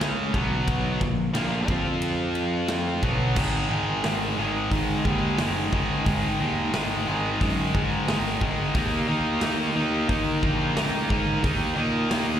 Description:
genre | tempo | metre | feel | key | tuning
hard rock | 89 BPM | 4/4 | straight | unclear | A4 = 439 Hz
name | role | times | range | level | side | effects
tight distorted guitar | riff | 0.0-12.4 s | Ab2 to F4 | -25 LUFS | equal | distortion
fuzz picked electric bass | bass | 0.0-12.4 s | Gb1 to Eb3 | -28 LUFS | equal | overdrive
big rock drum kit | drums | 0.0-12.3 s | crash cymbal, hi-hat, kick drum, ride cymbal, snare drum | -28 LUFS | equal | none
room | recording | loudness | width
studio ambience | live gig heard through the venue's PA, recital hall reverb | -22 LUFS | side -10 dB against mid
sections
0.0-3.4 A section; 3.4-12.4 B section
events
none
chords
0.3 B5; 1.0 Bb5; 1.7 F5; 3.0 B5; 3.4 Ab5; 8.7 Eb5

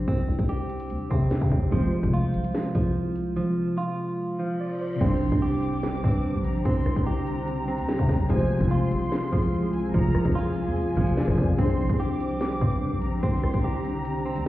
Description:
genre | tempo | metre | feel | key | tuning
hip hop, drill | 146 BPM | 4/4 | half-time | unclear | A4 = 439 Hz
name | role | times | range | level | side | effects
warbly lo-fi synth keys | accompaniment | 0.0-14.5 s | C3 to F5 | -30 LUFS | left 1 dB | chorus
clean electric guitar | arpeggios | 0.0-14.5 s | F3 to G4 | -28 LUFS | right 1 dB | ping-pong delay
growling 808-style bass | bass | 0.0-14.5 s | F1 to C3 | -28 LUFS | equal | none
drill drum kit | drums | 0.1-14.5 s | crash cymbal, hi-hat, kick drum, rim click, snare drum | -26 LUFS | equal | none
reverse cymbal and impact | sound effects | 4.7-6.7 s | none | -41 LUFS | equal | none
rich chamber violin section | second line | 5.0-14.5 s | Ab5 to D6 | -37 LUFS | left 1 dB | ping-pong delay
granular cloud pad | sustained chords | 6.0-14.5 s | D3 to Ab4 | -33 LUFS | left 1 dB | built-in reverb
room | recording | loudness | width
light reverb, digital ambience | heard muffled through a wall, stone room reverb, EQ | -23 LUFS | side -16 dB against mid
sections
0.0-5.0 A section; 5.0-14.5 B section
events
break 3.4-5.0; reverse cymbal 4.7-5.0; impact 5.0-6.7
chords
0.0 Csus2; 1.7 Fm; 5.0 Csus2; 8.3 Fm; 11.6 Csus2

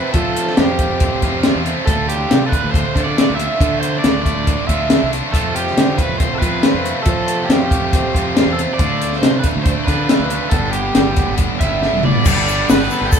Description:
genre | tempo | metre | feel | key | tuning
indie rock | 139 BPM | 4/4 | straight | D dorian | A4 = 439 Hz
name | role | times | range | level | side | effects
crunchy overdriven guitar | melody | 0.0-13.2 s | G4 to E5 | -22 LUFS | right 2 dB | none
high-gain distorted guitar | riff | 0.0-13.2 s | G2 to G4 | -24 LUFS | left 7 dB | distortion
sludgy distorted guitar | riff | 0.0-13.2 s | F2 to A4 | -22 LUFS | right 5 dB | overdrive
growling fingered electric bass | bass | 0.1-13.2 s | E1 to F3 | -24 LUFS | equal | overdrive
compact cocktail drum kit | drums | 0.1-13.2 s | crash cymbal, hi-hat, kick drum, snare drum, toms | -16 LUFS | equal | none
musette accordion | sustained chords | 12.3-13.2 s | A4 to B5 | -28 LUFS | right 1 dB | none
tube shaker | percussion | 12.3-13.2 s | none | -28 LUFS | left 9 dB | none
room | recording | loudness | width
moderate studio reverb, RT60 0.5 s | band playing live in one room | -14 LUFS | side -7 dB against mid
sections
0.0-12.3 A section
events
drum fill 11.8-12.3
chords
0.0 Fadd9; 1.9 Dmadd9; 5.3 Fadd9; 8.8 Dm; 10.5 G; 12.3 Gadd9

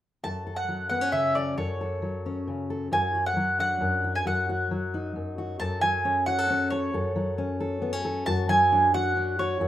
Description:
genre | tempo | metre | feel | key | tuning
folk | 134 BPM | 3/4 | straight | F# minor | A4 = 440 Hz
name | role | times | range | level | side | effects
mandolin | melody | 0.2-9.7 s | C#5 to A5 | -25 LUFS | right 2 dB | plate reverb
fingerpicked steel-string acoustic guitar | accompaniment | 0.2-9.7 s | F#2 to A4 | -28 LUFS | left 2 dB | none
room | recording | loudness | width
wet studio reverb, RT60 0.6 s | rough home demo mix | -24 LUFS | side -12 dB against mid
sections
0.2-5.6 A section; 5.6-9.7 B section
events
none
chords
0.2 F#m; 2.9 D/F#; 4.3 D#m/F#; 5.6 F#m; 8.3 D/F#

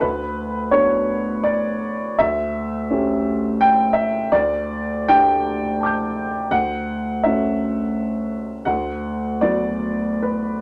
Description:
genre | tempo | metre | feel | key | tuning
neoclassical minimalist piano | 83 BPM | 3/4 | rubato | unclear | A4 = 440 Hz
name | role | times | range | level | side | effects
warm upright piano | solo | 0.0-10.6 s | D2 to G6 | -21 LUFS | equal | none
room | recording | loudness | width
moderate small room reverb, RT60 0.5 s | none | -21 LUFS | mono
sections
0.0-10.6 A section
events
none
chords
0.0 Bm/D; 2.2 A7/D; 4.3 Gsus2/D; 6.5 F#m7/D; 8.7 Bm/D

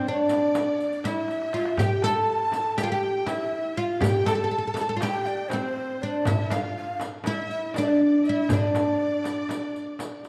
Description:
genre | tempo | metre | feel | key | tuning
Turkish makam ensemble | 241 BPM (eighths) | 9/8 | straight | D makam ussak | A4 = 439 Hz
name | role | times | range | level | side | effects
oud | melody | 0.0-10.2 s | C4 to A4 | -27 LUFS | equal | none
breathy mellow ney | second line | 0.0-10.2 s | C5 to A5 | -35 LUFS | equal | none
rich studio violin section | second line | 0.0-10.2 s | C5 to A5 | -39 LUFS | equal | none
darbuka | percussion | 0.3-10.3 s | none | -33 LUFS | equal | none
frame drum | percussion | 0.3-10.1 s | none | -36 LUFS | equal | none
riq | percussion | 0.3-10.3 s | none | -42 LUFS | equal | none
room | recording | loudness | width
wet recital hall reverb, RT60 1.6 s | dark, warm production | -25 LUFS | mono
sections
0.0-10.3 A section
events
drum fill 1.3-1.8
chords
none

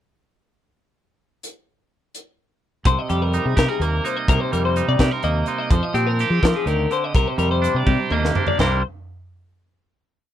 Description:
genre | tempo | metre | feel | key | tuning
math rock and midwest emo | 84 BPM (dotted quarters) | 6/8 | straight | C minor | A4 = 436 Hz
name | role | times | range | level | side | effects
crisp fusion drum kit | drums | 1.4-8.7 s | china cymbal, hi-hat, kick drum, snare drum, toms | -21 LUFS | equal | none
twangy electric guitar | accompaniment | 2.9-8.8 s | C3 to Bb4 | -24 LUFS | right 7 dB | none
twelve-string electric guitar | arpeggios | 2.9-8.8 s | G4 to Eb5 | -24 LUFS | left 8 dB | none
growling fingered electric bass | bass | 2.9-8.8 s | C2 to F3 | -21 LUFS | equal | overdrive
room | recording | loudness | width
little or no reverb | none | -18 LUFS | side -11 dB against mid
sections
1.4-2.9 pickup bar; 2.9-8.6 A section; 8.6-10.0 final chord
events
drum fill 7.9-8.6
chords
1.4 N.C.; 2.9 Cm7; 5.7 Fm9; 7.2 Cm11; 8.6 Csus2

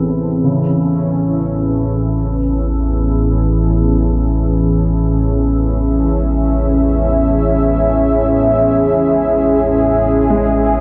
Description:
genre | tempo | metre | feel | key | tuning
dark ambient drone | free time | none | none | unclear | A4 = 440 Hz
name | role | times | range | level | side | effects
dark analog pad | sustained chords | 0.0-10.8 s | C4 to A5 | -18 LUFS | equal | chorus
organ-like drone | drone | 0.0-10.8 s | A1 to E2 | -18 LUFS | equal | ensemble chorus, built-in reverb
dark concert grand piano | arpeggios | 0.4-10.8 s | C#3 to G#3 | -25 LUFS | equal | delay
room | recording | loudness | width
wet cathedral reverb, RT60 6.3 s | none | -15 LUFS | mono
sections
0.0-10.8 A section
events
filter sweep on synth drone 0.0-10.8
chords
0.4 C#m

